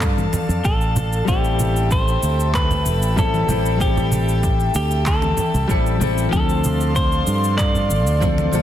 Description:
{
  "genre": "sunset chillout",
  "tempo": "95 BPM",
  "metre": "4/4",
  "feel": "straight",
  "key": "A minor",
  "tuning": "A4 = 444 Hz",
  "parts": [
    { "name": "nylon-string guitar", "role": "accompaniment", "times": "0.0-8.6 s", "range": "F3 to A4", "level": "-25 LUFS", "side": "moving between left 7 dB and right 6 dB", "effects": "auto-pan, low-pass filter, tape echo" },
    { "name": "airy breathy pad", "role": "sustained chords", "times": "0.0-8.6 s", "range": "A4 to C6", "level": "-28 LUFS", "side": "equal", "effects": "chorus" },
    { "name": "fretless electric bass", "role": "bass", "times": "0.0-8.6 s", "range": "E1 to G2", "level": "-20 LUFS", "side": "equal", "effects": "none" },
    { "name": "electronic handclaps, shaker and congas", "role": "drums", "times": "0.0-8.6 s", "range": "none", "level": "-28 LUFS", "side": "left 2 dB", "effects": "overdrive, small room ambience" },
    { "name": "electronic kick drum", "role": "drums", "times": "0.0-8.4 s", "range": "none", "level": "-22 LUFS", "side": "equal", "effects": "overdrive, small room ambience" },
    { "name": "congas", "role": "percussion", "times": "0.3-8.6 s", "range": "none", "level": "-25 LUFS", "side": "right 3 dB", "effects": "none" },
    { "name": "clean electric guitar", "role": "melody", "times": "0.7-8.6 s", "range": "G4 to D5", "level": "-24 LUFS", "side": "left 1 dB", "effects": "digital delay" }
  ],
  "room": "light reverb, digital ambience",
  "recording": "dense, heavily limited modern master",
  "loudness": "-16 LUFS",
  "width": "side -11 dB against mid",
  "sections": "0.0-8.6 A section",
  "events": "none",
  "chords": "0.0 Dm7; 1.3 Am7; 6.3 Dm7"
}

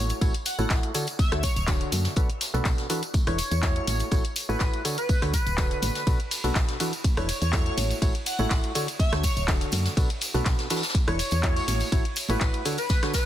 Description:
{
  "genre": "piano house",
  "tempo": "123 BPM",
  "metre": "4/4",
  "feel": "straight",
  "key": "A major",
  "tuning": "A4 = 440 Hz",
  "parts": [
    { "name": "airy dreamy lead", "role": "melody", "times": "0.0-13.3 s", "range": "B4 to F#5", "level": "-33 LUFS", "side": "equal", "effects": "chorus, dub echo" },
    { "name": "percussive organ stab", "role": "riff", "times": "0.0-13.1 s", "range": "B2 to C#5", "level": "-31 LUFS", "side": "equal", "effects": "wide subtle chorus, sidechain pumping, dub echo" },
    { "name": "solid FM bass", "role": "bass", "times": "0.0-12.5 s", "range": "D1 to F#2", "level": "-28 LUFS", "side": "equal", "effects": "sidechain pumping" },
    { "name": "house drum kit", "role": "drums", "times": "0.1-13.2 s", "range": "handclaps, hi-hat, ride cymbal, rim click", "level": "-32 LUFS", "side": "left 1 dB", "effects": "small room ambience" },
    { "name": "tambourine and congas", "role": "percussion", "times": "0.1-13.2 s", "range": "none", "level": "-35 LUFS", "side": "right 2 dB", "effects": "none" },
    { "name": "electronic kick drum", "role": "drums", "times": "0.2-13.2 s", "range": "none", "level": "-25 LUFS", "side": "equal", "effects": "small room ambience" },
    { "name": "jazz brush drum kit", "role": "drums", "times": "0.2-13.3 s", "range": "hi-hat, snare drum, tambourine", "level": "-37 LUFS", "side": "left 1 dB", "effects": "high-pass filter on hats, small room ambience, soft clipping on snare, high-pass filter on snare, high-pass filter on perc, high-pass filter on room" }
  ],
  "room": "little or no reverb",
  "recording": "dense, heavily limited modern master",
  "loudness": "-23 LUFS",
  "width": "side -12 dB against mid",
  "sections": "0.0-13.3 A section",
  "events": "none",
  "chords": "0.0 A6; 0.9 Dmaj7; 2.2 Bm7; 3.1 E7sus4; 3.9 A6; 4.8 Dmaj7; 6.1 Bm7; 7.0 E7sus4; 7.8 A6; 8.8 Dmaj7; 10.0 Bm7; 10.9 E7sus4; 11.7 A6; 12.7 Dmaj7"
}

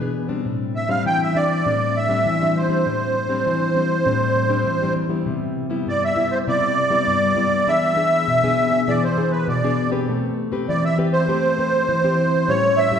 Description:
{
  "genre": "samba",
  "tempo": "100 BPM",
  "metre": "4/4",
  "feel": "straight",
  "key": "A minor, C major from 5.3 s",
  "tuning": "A4 = 442 Hz",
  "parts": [
    { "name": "nylon-string guitar", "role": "accompaniment", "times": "0.0-13.0 s", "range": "G2 to B4", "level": "-21 LUFS", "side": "left 2 dB", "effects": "none" },
    { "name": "musette accordion", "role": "melody", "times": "0.8-13.0 s", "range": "B4 to G5", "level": "-19 LUFS", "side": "right 2 dB", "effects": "none" }
  ],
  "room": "wet recital hall reverb, RT60 1.7 s",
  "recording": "recorded in a church or concert hall",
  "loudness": "-17 LUFS",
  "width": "side -8 dB against mid",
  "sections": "0.0-5.3 A section; 5.3-13.0 B section",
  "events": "none",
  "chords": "0.5 Am11; 5.3 Cmaj7; 7.7 E7; 10.1 Am9; 12.5 A7"
}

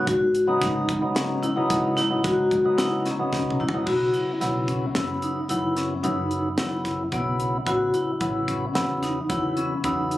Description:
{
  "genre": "progressive instrumental, band music in an uneven meter",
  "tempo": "110 BPM",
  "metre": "7/4",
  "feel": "straight",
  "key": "B major",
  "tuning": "A4 = 440 Hz",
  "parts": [
    { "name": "percussive tonewheel organ", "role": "accompaniment", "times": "0.0-10.2 s", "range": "C#3 to E4", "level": "-26 LUFS", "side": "equal", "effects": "overdrive, slow rotary speaker" },
    { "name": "vibraphone with medium hard mallets", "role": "arpeggios", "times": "0.0-10.2 s", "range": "B3 to F#4", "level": "-25 LUFS", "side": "left 1 dB", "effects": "none" },
    { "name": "upright bass", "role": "bass", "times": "0.1-10.2 s", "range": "G#1 to G#2", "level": "-32 LUFS", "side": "equal", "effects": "none" },
    { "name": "tight funk drum kit", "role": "drums", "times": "0.1-10.2 s", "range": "crash cymbal, hi-hat, kick drum, snare drum, toms", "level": "-30 LUFS", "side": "equal", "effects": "none" }
  ],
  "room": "light reverb, small room ambience",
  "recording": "recorded on a phone in the room, club reverb, compression",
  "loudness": "-22 LUFS",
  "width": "side -15 dB against mid",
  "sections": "0.0-3.9 A section; 3.9-10.2 B section",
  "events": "drum fill 3.3-3.9",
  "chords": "0.1 E69/G#; 3.9 Bsus4; 7.7 A"
}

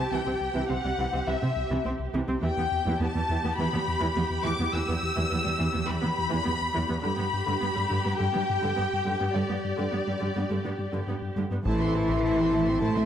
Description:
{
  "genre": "cinematic, hybrid orchestral and electronic film score",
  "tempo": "104 BPM",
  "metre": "4/4",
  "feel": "straight",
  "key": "A minor",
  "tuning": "A4 = 437 Hz",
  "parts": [
    { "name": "warm symphonic violin section", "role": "melody", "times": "0.0-11.1 s", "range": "D5 to E6", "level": "-30 LUFS", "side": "left 4 dB", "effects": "none" },
    { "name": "warm symphonic viola section", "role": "accompaniment", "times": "0.0-13.1 s", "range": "D3 to A4", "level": "-32 LUFS", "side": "right 2 dB", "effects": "none" },
    { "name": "smooth gliding synth bass", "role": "riff", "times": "0.0-13.0 s", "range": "C2 to A3", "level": "-32 LUFS", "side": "left 1 dB", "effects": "none" },
    { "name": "rich symphonic cello section", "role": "bass", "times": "0.0-13.1 s", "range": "E2 to A3", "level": "-31 LUFS", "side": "right 3 dB", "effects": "none" },
    { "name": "warm symphonic violin section", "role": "second line", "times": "11.6-13.1 s", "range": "C5 to C6", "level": "-33 LUFS", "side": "right 2 dB", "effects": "none" },
    { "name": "dark French horn section", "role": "sustained chords", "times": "11.7-13.1 s", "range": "E4 to A4", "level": "-26 LUFS", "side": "left 2 dB", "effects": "none" },
    { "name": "saturated sub bass", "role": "bass", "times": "11.7-13.1 s", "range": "A1", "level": "-35 LUFS", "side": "equal", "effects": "none" },
    { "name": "warm symphonic double bass section", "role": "bass", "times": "11.7-13.1 s", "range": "A1", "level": "-36 LUFS", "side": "right 4 dB", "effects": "none" },
    { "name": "solo taiko drums", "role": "drums", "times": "11.7-13.1 s", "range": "none", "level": "-35 LUFS", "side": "equal", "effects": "none" }
  ],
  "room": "moderate concert hall reverb, RT60 2.4 s",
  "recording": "none",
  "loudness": "-25 LUFS",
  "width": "side -9 dB against mid",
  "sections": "0.0-11.7 A section; 11.7-13.1 A section",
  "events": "none",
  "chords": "0.0 C; 2.4 Em; 7.0 G; 11.7 Am"
}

